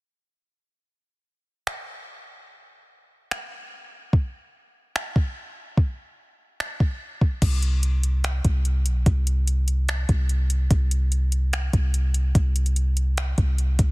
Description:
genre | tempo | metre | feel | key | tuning
hip hop, atmospheric cloud-rap | 146 BPM | 4/4 | half-time | unclear | A4 = 440 Hz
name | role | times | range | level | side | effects
smooth R&B drum kit | drums | 1.7-13.9 s | crash cymbal, finger snaps, hi-hat, kick drum | -23 LUFS | equal | soft clipping on snare
soft 808-style bass | bass | 7.4-13.9 s | B1 to C2 | -21 LUFS | equal | none
room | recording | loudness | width
little or no reverb | dense, heavily limited modern master | -21 LUFS | side -24 dB against mid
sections
0.8-7.4 A section; 7.4-13.9 B section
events
none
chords
none

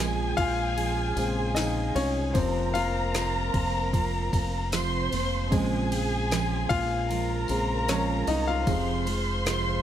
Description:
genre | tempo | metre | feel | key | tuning
pop ballad | 76 BPM | 4/4 | straight | Bb minor | A4 = 439 Hz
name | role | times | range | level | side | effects
dark studio violin section | second line | 0.0-9.8 s | Ab4 to C6 | -31 LUFS | equal | none
warm concert grand piano | accompaniment | 0.0-9.8 s | Db3 to F5 | -30 LUFS | left 3 dB | none
picked steel-string acoustic guitar | arpeggios | 0.0-9.8 s | F2 to F4 | -33 LUFS | right 9 dB | none
fingered electric bass | bass | 0.0-9.8 s | F1 to C2 | -30 LUFS | equal | none
smooth R&B drum kit | drums | 0.4-9.6 s | kick drum, ride cymbal, snare drum | -33 LUFS | equal | none
tambourine | percussion | 1.2-9.6 s | none | -42 LUFS | left 8 dB | none
room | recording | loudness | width
light reverb, small room reverb | none | -24 LUFS | side -10 dB against mid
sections
0.0-9.8 A section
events
grand piano solo 0.0-9.8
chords
0.0 Bbm7; 2.4 Fsus4; 5.5 Bbm7; 8.7 Fm

